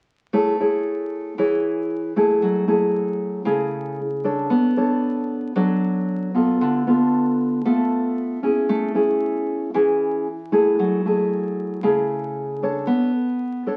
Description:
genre	bossa nova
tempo	115 BPM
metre	4/4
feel	straight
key	A major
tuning	A4 = 440 Hz
part	nylon-string guitar	accompaniment	0.3-13.8 s	C#3 to C#5	-21 LUFS	equal	none
room	moderate studio reverb, RT60 0.8 s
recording	very old 78 rpm record, vinyl crackle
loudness	-21 LUFS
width	mono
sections	0.3-13.8 A section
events	none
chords	0.3 Amaj7; 2.4 F#m9; 4.5 Bm9; 6.6 Dm6; 8.7 Amaj7; 10.8 F#m9; 12.9 Bm9

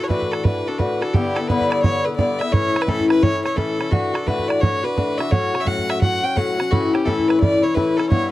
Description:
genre	celtic folk, Celtic hornpipe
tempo	172 BPM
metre	4/4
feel	swing 64% on 8ths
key	unclear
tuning	A4 = 436 Hz
part	clear fiddle	melody	0.0-8.3 s	F#4 to G5	-23 LUFS	equal	none
part	Irish bouzouki	accompaniment	0.0-8.3 s	G2 to F#4	-20 LUFS	left 3 dB	none
part	bodhran	percussion	0.1-8.2 s	none	-20 LUFS	right 2 dB	none
room	light reverb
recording	dry, close 1970s-style studio recording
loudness	-17 LUFS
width	side -15 dB against mid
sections	0.0-8.3 A section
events	none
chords	0.0 Dadd9; 1.1 Em7; 2.5 A; 3.9 Dadd9; 5.3 F#m; 6.7 A

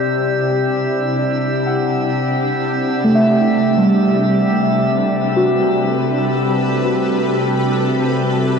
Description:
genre	ambient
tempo	free time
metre	none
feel	none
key	unclear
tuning	A4 = 440 Hz
part	shimmering ambient pad	sustained chords	0.0-8.6 s	C3 to B4	-23 LUFS	left 1 dB	chorus, built-in reverb, phaser
part	muted felt-like synth keys	arpeggios	0.0-8.5 s	G3 to F#5	-17 LUFS	right 1 dB	chorus, ping-pong delay
part	bowed-like drone	drone	0.0-8.6 s	C3	-20 LUFS	left 1 dB	built-in reverb
part	drifting glass-harmonics texture	texture	0.0-8.6 s	G4 to A6	-22 LUFS	left 2 dB	chorus, built-in reverb
room	wet cathedral reverb, RT60 6.2 s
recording	worn, warbling old tape, cassette tape, warbly pitch drift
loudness	-14 LUFS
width	side -6 dB against mid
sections	0.0-8.6 A section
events	fade-in on ambient pad 0.0-8.6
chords	0.0 C; 2.6 Gadd9

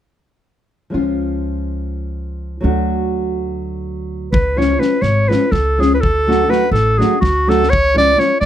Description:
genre	balkan folk, Balkan wedding band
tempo	248 BPM (eighths)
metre	7/8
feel	straight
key	C# phrygian dominant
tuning	A4 = 439 Hz
part	nylon-string guitar	accompaniment	0.9-8.3 s	E#3 to F#4	-18 LUFS	left 1 dB	none
part	upright bass	bass	0.9-8.5 s	G#1 to D2	-20 LUFS	equal	none
part	clear clarinet	melody	4.3-8.5 s	F#4 to D5	-15 LUFS	right 1 dB	none
part	loose indie drum kit	percussion	4.3-8.5 s	kick drum, snare drum	-22 LUFS	left 1 dB	none
room	light reverb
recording	close, detailed microphones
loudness	-13 LUFS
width	side -10 dB against mid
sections	0.9-4.3 A section; 4.3-8.5 B section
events	none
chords	0.9 C#; 2.6 D; 4.3 C#; 6.0 D; 7.7 C#

